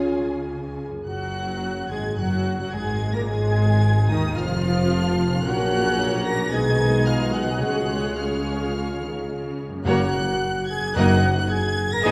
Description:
classical, dramatic, fast romantic movement for symphony orchestra; 109 BPM; 4/4; straight; F# major; A4 = 445 Hz
warm symphonic violin section; melody; 0.0-12.1 s; G#5 to A#6; -33 LUFS; equal
warm symphonic violin section; second line; 0.0-12.1 s; D#4 to D#5; -36 LUFS; equal
warm symphonic viola section; accompaniment; 0.0-12.1 s; D#3 to G#4; -32 LUFS; equal
mellow French horn section; sustained chords; 0.0-12.1 s; D#3 to B4; -35 LUFS; equal
concert harp; arpeggios; 0.0-12.1 s; F#2 to B4; -36 LUFS; equal
rich studio double bass section; bass; 0.0-12.1 s; E#1 to D#2; -31 LUFS; equal
warm symphonic cello section; bass; 0.0-12.1 s; D#2 to D#3; -31 LUFS; equal
clear clarinet; second line; 1.1-12.1 s; D#4 to A#4; -33 LUFS; equal
silver concert flute; second line; 1.1-12.1 s; D#5 to A#5; -35 LUFS; equal
bright trombone section; sustained chords; 1.1-12.1 s; C#3 to A#3; -33 LUFS; equal
mellow tuba; bass; 1.1-12.1 s; E#1 to D#2; -32 LUFS; equal
timpani; percussion; 9.9-11.7 s; F#2; -30 LUFS; equal
wet scoring stage reverb, RT60 2.0 s; heard from further back in the room; -23 LUFS; mono
0.0-1.1 A section; 1.1-12.1 B section
0.0 C#; 1.1 F#; 3.3 C#7/G#; 5.5 F#/A#; 6.5 G#m/B; 7.6 C#; 9.9 F#; 11.0 D#m/F#
0.50 | 1.07 1.63 2.18 2.73 | 3.28 3.82 4.37 4.92 | 5.46 5.99 6.53 7.07 | 7.63 8.19 8.75 9.31 | 9.87 10.42 10.97 11.51 | 12.05

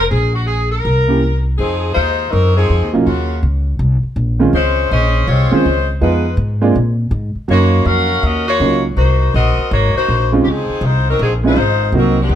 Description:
jazz, big band swing; 162 BPM; 4/4; swing 66% on 8ths; A4 = 440 Hz
warm saxophone section; melody; 0.0-12.4 s; Db3 to F5; -17 LUFS; left 2 dB; plate reverb
upright bass; bass; 0.0-12.4 s; Ab1 to Bb2; -15 LUFS; equal
clear baby grand piano; accompaniment; 1.1-12.2 s; Eb3 to F5; -16 LUFS; right 4 dB
moderate large studio reverb, RT60 0.9 s; -12 LUFS; side -10 dB against mid
0.0-1.6 A section; 1.6-12.4 B section
0.0 Bb7(no3); 0.8 C7b9; 1.6 Fm7; 3.1 Ebm9; 3.8 Ab69; 6.0 Fm7b5; 6.8 Absus2; 7.5 Ebm9; 9.0 Ab13
| 0.11 0.48 0.85 1.22 | 1.58 1.95 2.32 2.69 | 3.06 3.43 3.80 4.17 | 4.54 4.91 5.28 5.65 | 6.02 6.39 6.76 7.13 | 7.50 7.87 8.24 8.61 | 8.98 9.35 9.71 10.08 | 10.45 10.82 11.19 11.56 | 11.93 12.30

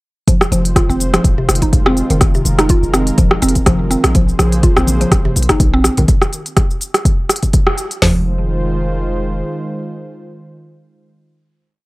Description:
afro house; 124 BPM; 4/4; swing 55% on 16ths; F minor; A4 = 438 Hz
warm analog pad; sustained chords; 0.3-11.1 s; Db3 to C5; -24 LUFS; right 1 dB; chorus, sidechain pumping
mallet-like synth pluck; arpeggios; 0.3-8.2 s; C3 to F4; -18 LUFS; equal; chorus, sidechain pumping, analog delay
afro-pop drum kit; drums; 0.3-8.1 s; hi-hat, kick drum, snare drum, toms; -13 LUFS; equal
afro-pop drum kit; drums; 0.3-8.0 s; hi-hat, rim click, shaker; -17 LUFS; equal
warm 808-style bass; bass; 0.5-9.4 s; Eb1 to Bb1; -18 LUFS; equal; sidechain pumping
congas; percussion; 4.1-6.1 s; -25 LUFS; left 2 dB
little or no reverb; dry, gritty hardware recording; -12 LUFS; side -21 dB against mid
0.3-8.0 drop; 8.0-11.9 final chord
drop 0.3-8.0; band accent 7.7
0.3 Fm7; 4.1 Bbm9; 8.0 Fm7
| 0.28 0.76 1.25 1.73 | 2.21 2.70 3.18 3.67 | 4.15 4.63 5.12 5.60 | 6.08 6.57 7.05 7.54 | 8.02 8.50 8.99 9.47 | 9.96 10.44 10.92

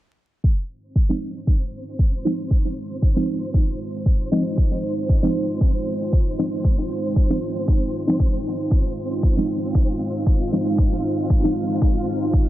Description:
dub techno; 116 BPM; 4/4; straight; F minor; A4 = 440 Hz
deep dark ambient pad; sustained chords; 1.7-12.5 s; Ab3 to F5; -26 LUFS; right 1 dB; chorus, built-in reverb, sidechain pumping
electronic kick drum; drums; 0.4-12.4 s; -18 LUFS; equal
flickering grainy texture; texture; 0.9-12.5 s; C4 to C5; -32 LUFS; equal; built-in reverb, ensemble chorus, sidechain pumping
deep mellow chord stab; stabs; 1.1-11.5 s; F3 to Eb4; -25 LUFS; equal; chorus, phaser, sidechain pumping, dub echo
moderate lush hall reverb, RT60 1.9 s; dreamy mix soaked in reverb, vinyl crackle, low-pass filter; -19 LUFS; side -15 dB against mid
0.4-12.5 A section
filter sweep 0.4-12.5
0.4 Fm7
| 0.44 0.95 1.47 1.99 | 2.51 3.02 3.54 4.06 | 4.58 5.09 5.61 6.13 | 6.64 7.16 7.68 8.20 | 8.71 9.23 9.75 10.27 | 10.78 11.30 11.82 12.34

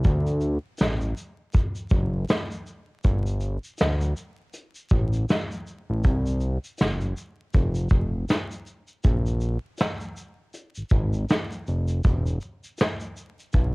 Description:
lo-fi hip hop; 80 BPM; 4/4; swing 58% on 16ths; A4 = 441 Hz
fat analog bass; bass; 0.0-13.7 s; E1 to D2; -24 LUFS; equal
vintage brush drum kit; drums; 0.0-13.7 s; hi-hat, kick drum, shaker, snare drum; -23 LUFS; equal; cassette tape
little or no reverb; home recording on cassette, vinyl crackle; -23 LUFS; side -28 dB against mid
0.0-9.0 A section; 9.0-13.7 B section
| 0.05 0.80 1.55 2.30 | 3.05 3.80 4.55 5.30 | 6.05 6.80 7.55 8.30 | 9.05 9.80 10.55 11.30 | 12.05 12.80 13.55

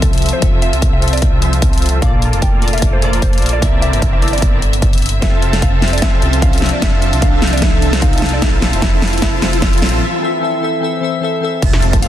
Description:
future bass; 150 BPM; 4/4; swing 55% on 16ths, half-time; F major; A4 = 440 Hz
mallet-like synth pluck; melody; 0.0-12.1 s; A4 to G5; -25 LUFS; right 1 dB; chorus, sidechain pumping, ping-pong delay
glassy digital keys; accompaniment; 0.0-11.6 s; Bb2 to A5; -22 LUFS; left 4 dB; chorus, phaser, sidechain pumping, tape echo
bright symphonic string section; sustained chords; 0.0-10.0 s; C3 to E5; -28 LUFS; left 2 dB; sidechain pumping
dense compressed supersaw; riff; 0.0-12.1 s; Bb3 to A5; -22 LUFS; right 1 dB; cassette tape, sidechain pumping, low-pass filter
wide detuned saw bass; bass; 0.0-12.1 s; F1 to C2; -17 LUFS; equal; chorus, sidechain pumping
big-room dance drum kit; drums; 0.0-12.1 s; crash cymbal, hi-hat, snare drum; -20 LUFS; equal
electronic kick drum; drums; 0.0-12.0 s; -14 LUFS; equal
riser and impact; sound effects; 1.8-12.1 s; -25 LUFS; equal
airy dreamy lead; arpeggios; 11.6-12.1 s; A5; -25 LUFS; right 1 dB; chorus, sidechain pumping
light reverb, digital ambience; dense, heavily limited modern master; -11 LUFS; side -12 dB against mid
0.0-11.6 A section
build-up 0.0-11.6; filter sweep on supersaw synth 0.0-11.6; riser 1.8-10.0; drum fill 5.2-10.0; break 10.0-11.6; impact 11.6-12.1
0.0 Fmaj7; 2.0 Bbmaj7; 3.6 C13; 5.2 Fmaj7; 8.4 Bbmaj7; 10.0 C6
0.02 | 0.42 0.82 1.22 1.62 | 2.02 2.42 2.82 3.22 | 3.62 4.02 4.42 4.82 | 5.22 5.62 6.02 6.42 | 6.82 7.22 7.62 8.02 | 8.42 8.82 9.22 9.62 | 10.02 10.42 10.82 11.22 | 11.62 12.02

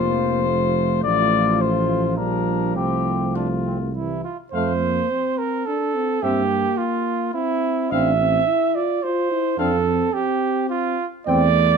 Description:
classical, brass quintet; 106 BPM; 3/4; rubato; F major; A4 = 440 Hz
mellow trumpet; melody; 0.0-11.5 s; F4 to G5; -23 LUFS; left 8 dB
mellow trumpet; second line; 0.0-11.8 s; C4 to E5; -23 LUFS; right 8 dB
dark French horn; accompaniment; 0.0-11.8 s; G3 to F4; -26 LUFS; left 5 dB
warm trombone; accompaniment; 0.0-11.5 s; E3 to C4; -26 LUFS; right 2 dB
mellow tuba; bass; 0.0-11.7 s; F1 to G2; -24 LUFS; right 4 dB
light reverb; dark, warm production; -19 LUFS; side -6 dB against mid
0.0-4.5 A section; 4.5-11.8 B section
0.0 F; 1.0 F/A; 2.2 Gm7/Bb; 2.8 F/C; 3.9 C; 4.5 F; 6.2 C7/G; 7.9 F/A; 9.6 F; 11.3 C/E
0.48 | 1.04 1.61 2.18 | 2.76 3.35 3.94 | 4.53 5.10 5.67 | 6.23 6.79 7.34 | 7.92 8.48 9.04 | 9.59 10.14 10.70 | 11.27

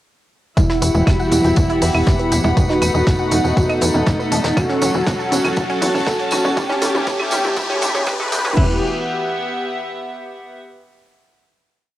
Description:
melodic techno; 120 BPM; 4/4; straight; E dorian; A4 = 440 Hz
wide unison lead; melody; 0.6-8.8 s; D#4 to B4; -22 LUFS; equal; sidechain pumping, cassette tape, analog delay
warm analog pad; sustained chords; 0.6-8.8 s; E3 to A4; -24 LUFS; equal; chorus, sidechain pumping, cassette tape
analog pluck; arpeggios; 0.6-8.8 s; C#4 to C#6; -24 LUFS; right 2 dB; chorus, sidechain pumping, cassette tape, tape echo
tight sequencer bass; bass; 0.6-8.8 s; E1 to E2; -22 LUFS; equal; tube saturation, sidechain pumping
damped 70s drum kit; drums; 0.6-8.4 s; hi-hat, snare drum; -31 LUFS; left 1 dB; high-pass filter on hats, cassette tape, high-pass filter on snare, high-pass filter on room
electronic kick drum; drums; 0.6-8.7 s; -19 LUFS; equal; cassette tape
techno drum kit; drums; 0.6-8.7 s; claves, crash cymbal, hi-hat, percussion blips, toms; -25 LUFS; equal; high-pass filter on toms, cassette tape, high-pass filter on perc, high-pass filter on hats, high-pass filter on cymbals, high-pass filter on room
tambourine; percussion; 0.6-8.5 s; -29 LUFS; right 2 dB
riser; sound effects; 3.7-8.6 s; -32 LUFS; left 1 dB
clear studio string section; texture; 0.6-10.5 s; G3 to B5; -25 LUFS; left 1 dB; sidechain pumping, cassette tape
moderate spring reverb, RT60 1.7 s, digital ambience; home recording on cassette, high-pass filter; -15 LUFS; side -14 dB against mid
0.6-8.6 build; 8.6-10.6 final chord
build-up 0.6-8.6; drum fill 0.6-8.6; filter sweep on synth pluck 0.6-8.6; filter sweep on analog synth lead 0.6-8.6; filter sweep 0.6-8.6; riser 3.7-8.6
0.6 Emadd9; 2.6 B7/E; 4.6 F#m/E; 6.6 A7/E; 8.6 Emadd9
| 0.57 1.07 1.57 2.07 | 2.57 3.07 3.57 4.07 | 4.57 5.07 5.57 6.07 | 6.57 7.07 7.57 8.07 | 8.57 9.07 9.57 10.07

